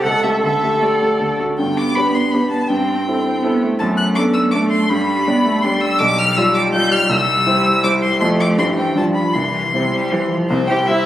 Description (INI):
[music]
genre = quick classical-period movement for piano trio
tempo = 162 BPM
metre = 3/4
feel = straight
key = G major, C major from 6.0 s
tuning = A4 = 438 Hz
[part]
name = rich violin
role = melody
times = 0.0-11.1 s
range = C5 to G6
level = -19 LUFS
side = left 1 dB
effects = none
[part]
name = rich cello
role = second line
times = 0.0-11.1 s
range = C3 to A4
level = -20 LUFS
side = right 2 dB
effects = none
[part]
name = warm concert grand piano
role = accompaniment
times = 0.0-11.1 s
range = B1 to D5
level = -18 LUFS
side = left 1 dB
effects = none
[sound]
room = wet recital hall reverb, RT60 1.4 s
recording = recorded on a phone in the room, club reverb, compression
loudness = -14 LUFS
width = side -12 dB against mid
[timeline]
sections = 0.0-1.6 A section; 1.6-10.5 B section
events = none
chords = 0.0 A7/C#; 0.4 Dsus4; 1.2 D; 1.6 G; 2.7 Am7/G; 3.8 D/F#; 4.9 G; 6.0 G7/B; 7.1 C; 8.2 F; 8.6 C/G; 9.0 G7; 9.3 C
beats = 0.04 | 0.43 0.81 1.20 | 1.59 1.96 2.33 | 2.70 3.07 3.44 | 3.80 4.17 4.54 | 4.90 5.27 5.63 | 6.00 6.37 6.73 | 7.10 7.47 7.84 | 8.21 8.58 8.96 | 9.34 9.72 10.11 | 10.49 10.87